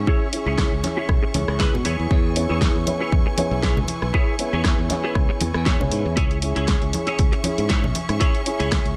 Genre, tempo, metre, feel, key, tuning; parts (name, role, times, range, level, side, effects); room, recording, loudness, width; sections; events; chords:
nu-disco, nu disco; 118 BPM; 4/4; swing 55% on 16ths; A4 = 440 Hz
warm symphonic string section; sustained chords; 0.0-9.0 s; C#4 to C#6; -33 LUFS; equal; sidechain pumping
modern bright fingered electric bass; bass; 0.0-8.9 s; B1 to B2; -27 LUFS; equal; tube saturation
clean electric guitar; riff; 0.1-8.9 s; E4 to C#5; -30 LUFS; equal; ensemble chorus, low-pass filter
electronic kick drum; drums; 0.1-8.8 s; -23 LUFS; equal; small room ambience
dark concert grand piano; accompaniment; 0.3-8.9 s; B3 to C#5; -30 LUFS; equal; low-pass filter
pop drum kit; drums; 0.3-8.9 s; hi-hat, rim click, snare drum; -29 LUFS; equal; small room ambience
congas; percussion; 0.8-8.1 s; -32 LUFS; equal
digital ambience; -21 LUFS; mono
0.0-9.0 A section
filter sweep on grand piano 0.0-9.0
0.0 E6